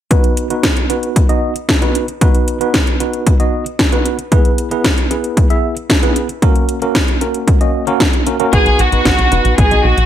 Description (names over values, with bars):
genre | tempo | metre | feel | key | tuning
italo disco | 114 BPM | 4/4 | straight | B major | A4 = 436 Hz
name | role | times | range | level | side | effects
tine electric piano | stabs | 0.1-9.9 s | A#3 to E5 | -18 LUFS | right 2 dB | overdrive, medium stereo tremolo, low-pass filter, ping-pong delay
electronic kick drum | drums | 0.1-9.7 s | none | -14 LUFS | equal | overdrive
house drum kit | drums | 0.1-10.1 s | hi-hat, snare drum | -17 LUFS | equal | overdrive, gated reverb
warm chamber violin section | melody | 8.5-10.1 s | F#4 to G#4 | -13 LUFS | equal | tape echo
tight sequencer bass | bass | 8.5-10.1 s | F#1 to B1 | -15 LUFS | equal | none
room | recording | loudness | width
light reverb | none | -12 LUFS | side -10 dB against mid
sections
0.1-10.1 A section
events
filter sweep on tine electric piano 0.1-10.1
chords
0.1 B; 4.3 E; 6.4 F#; 8.5 B